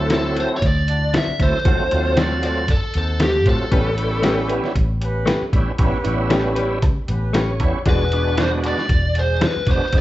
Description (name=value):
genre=straight-eighth soul blues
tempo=116 BPM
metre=4/4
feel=straight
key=unclear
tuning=A4 = 439 Hz
part: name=biting lead guitar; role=melody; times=0.0-4.5, 7.9-10.0 s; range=G4 to E5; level=-22 LUFS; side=equal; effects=overdrive
part: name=bright tonewheel organ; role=accompaniment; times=0.0-10.0 s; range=F#3 to C#5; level=-24 LUFS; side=right 2 dB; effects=slow rotary speaker, overdrive, chorus vibrato
part: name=dark horn section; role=sustained chords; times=0.0-10.0 s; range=G#3 to D5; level=-31 LUFS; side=equal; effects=none
part: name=vintage muted fingered electric bass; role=bass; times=0.0-10.0 s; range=E1 to A2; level=-22 LUFS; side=equal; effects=none
part: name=direct-recorded clean electric guitar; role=stabs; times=0.1-9.6 s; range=D3 to B4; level=-24 LUFS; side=left 2 dB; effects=tremolo
part: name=lo-fi sampler-style drum kit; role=drums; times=0.1-10.0 s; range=hi-hat, kick drum, snare drum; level=-20 LUFS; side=equal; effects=none
room=moderate large studio reverb, RT60 0.8 s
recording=band playing live in one room, nothing above 7.8 kHz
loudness=-16 LUFS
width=side -15 dB against mid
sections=0.0-10.0 A section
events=tonewheel organ fill 7.1-7.9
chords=0.0 D9; 1.7 D#dim7; 3.7 A9; 7.9 E9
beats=0.10 0.62 1.14 | 1.65 2.17 2.69 3.21 | 3.72 4.24 4.76 5.28 | 5.79 6.31 6.83 7.34 | 7.86 8.38 8.89 9.41 | 9.93